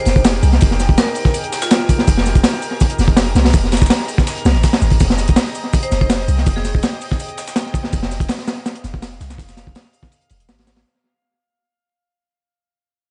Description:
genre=drum and bass, jungle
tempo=164 BPM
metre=4/4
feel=straight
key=F minor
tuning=A4 = 444 Hz
part: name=vibraphone with hard mallets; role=melody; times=0.0-2.0, 5.8-6.8 s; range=F4 to C5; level=-29 LUFS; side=equal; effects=dub echo
part: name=lush unison pad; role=sustained chords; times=0.0-10.8 s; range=Eb4 to Eb5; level=-32 LUFS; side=equal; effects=chorus
part: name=drifting glass-harmonics texture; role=texture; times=0.0-10.9 s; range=F5 to Bb5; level=-34 LUFS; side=equal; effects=chorus, built-in reverb
part: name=warm 808-style bass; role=bass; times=0.1-10.8 s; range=Eb1 to C2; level=-19 LUFS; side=equal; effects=none
part: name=breakbeat sampler-style drum kit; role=drums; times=0.1-10.8 s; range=hi-hat, shaker, snare drum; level=-31 LUFS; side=equal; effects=overdrive, high-pass filter on perc, high-pass filter on hats, high-pass filter on snare, high-pass filter on room, analog delay
part: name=crunchy breakbeat drum kit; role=drums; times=0.1-10.8 s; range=hi-hat, kick drum, snare drum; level=-18 LUFS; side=equal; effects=analog delay
room=studio reverb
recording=echo-heavy mix, vinyl crackle, nothing above 10.3 kHz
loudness=-16 LUFS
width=mono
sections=0.0-10.9 A section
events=drop 0.0-10.9; fade-out 5.0-10.9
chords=0.0 Fm11

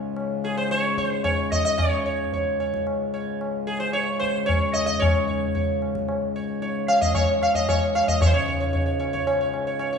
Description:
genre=indian classical, Hindustani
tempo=112 BPM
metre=3/4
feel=straight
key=unclear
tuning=A4 = 439 Hz
part: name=pedal harmonium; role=drone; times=0.0-10.0 s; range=Db2 to Ab2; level=-29 LUFS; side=left 5 dB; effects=none
part: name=tabla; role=percussion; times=0.2-10.0 s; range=none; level=-25 LUFS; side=left 1 dB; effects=none
part: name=sitar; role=melody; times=0.4-10.0 s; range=Ab4 to F5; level=-24 LUFS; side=right 2 dB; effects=none
room=wet recital hall reverb, RT60 1.4 s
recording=recorded in a church or concert hall, nothing above 11.0 kHz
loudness=-21 LUFS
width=side -6 dB against mid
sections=0.0-8.2 A section; 8.2-10.0 B section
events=speeding up 0.0-10.0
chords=none

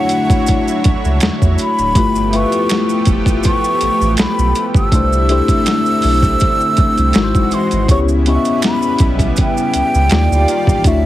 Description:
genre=R&B, neo-soul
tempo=81 BPM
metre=4/4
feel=swing 54% on 16ths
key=unclear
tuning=A4 = 440 Hz
part: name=breathy mellow concert flute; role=melody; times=0.0-11.1 s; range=E5 to E6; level=-18 LUFS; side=equal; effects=slapback echo
part: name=tine electric piano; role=accompaniment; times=0.0-11.1 s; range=G#3 to E5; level=-18 LUFS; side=left 3 dB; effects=phaser
part: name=lush unison pad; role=sustained chords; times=0.0-11.1 s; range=C#3 to D5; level=-21 LUFS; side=right 1 dB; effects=chorus
part: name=boom bap sampler-style drum kit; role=drums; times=0.1-11.0 s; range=hi-hat, kick drum, snare drum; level=-15 LUFS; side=equal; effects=overdrive
part: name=maracas and finger snaps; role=percussion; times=0.1-11.0 s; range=none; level=-28 LUFS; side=right 8 dB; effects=none
part: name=warm sub bass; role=bass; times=0.9-11.1 s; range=D1 to E2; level=-16 LUFS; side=right 1 dB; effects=none
room=little or no reverb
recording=heavily compressed radio sound, multiband compression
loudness=-11 LUFS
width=side -14 dB against mid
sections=0.0-11.1 A section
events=none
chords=0.0 Dmaj9; 2.0 G13; 4.9 C69; 7.1 G#7b13; 7.9 C#m7b5; 10.1 D#maj9

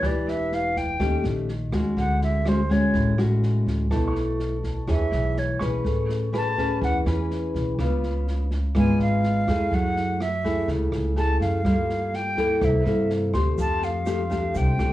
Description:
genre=bossa nova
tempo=124 BPM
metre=4/4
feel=straight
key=A major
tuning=A4 = 439 Hz
part: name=reedy concert flute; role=melody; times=0.0-14.9 s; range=C5 to A5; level=-27 LUFS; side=right 1 dB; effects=none
part: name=nylon-string guitar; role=accompaniment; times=0.0-14.9 s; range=A2 to C#5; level=-25 LUFS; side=left 1 dB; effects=none
part: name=warm concert grand piano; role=accompaniment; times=0.0-7.8, 13.3-14.9 s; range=A5 to F#6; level=-38 LUFS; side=equal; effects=none
part: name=upright bass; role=bass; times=0.0-14.9 s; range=E1 to G2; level=-26 LUFS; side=equal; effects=none
part: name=open jazz drum kit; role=drums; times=0.0-14.9 s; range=kick drum, rim click, snare drum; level=-31 LUFS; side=right 1 dB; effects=none
part: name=tube shaker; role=percussion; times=13.6-14.9 s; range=none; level=-51 LUFS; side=right 6 dB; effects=none
room=moderate studio reverb, RT60 0.6 s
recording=worn, warbling old tape, cassette tape, warbly pitch drift, small room ambience, faint mains hum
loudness=-21 LUFS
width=side -14 dB against mid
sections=0.0-14.9 A section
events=flute solo 0.0-14.9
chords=0.0 Em7; 1.0 D#7#11; 2.0 Dmaj7#11; 3.9 Bm11; 4.9 E6; 5.8 Amaj9; 7.8 C#7b9; 9.7 F#m9; 11.7 Gm9; 12.6 C13; 13.6 F69

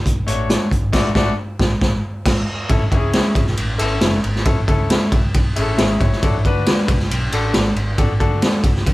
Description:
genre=uptempo 1960s-style soul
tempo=136 BPM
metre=4/4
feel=straight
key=A major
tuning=A4 = 437 Hz
part: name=vintage muted fingered electric bass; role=bass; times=0.1-8.9 s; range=F#1 to D2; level=-23 LUFS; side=equal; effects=none
part: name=raw garage drum kit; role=drums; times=0.1-8.9 s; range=crash cymbal, hi-hat, kick drum, ride cymbal, snare drum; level=-17 LUFS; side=equal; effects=none
part: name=bright concert grand piano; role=accompaniment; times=0.3-8.7 s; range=A3 to E5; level=-23 LUFS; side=left 3 dB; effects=none
room=light reverb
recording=band playing live in one room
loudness=-15 LUFS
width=side -18 dB against mid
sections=0.0-2.7 A section; 2.7-8.9 B section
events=band accent 0.9-2.7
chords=0.0 D; 2.7 A; 6.2 D

